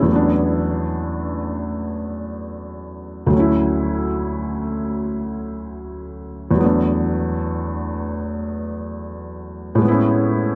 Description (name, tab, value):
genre	hip hop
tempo	free time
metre	none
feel	none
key	unclear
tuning	A4 = 440 Hz
part	felt-muted upright piano	solo	0.0-10.6 s	D2 to G#4	-22 LUFS	equal	analog delay
room	light reverb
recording	none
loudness	-21 LUFS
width	mono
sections	0.0-9.8 A section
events	none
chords	0.1 E9sus4; 3.3 Dmaj7; 6.6 E9sus4; 9.8 Amaj7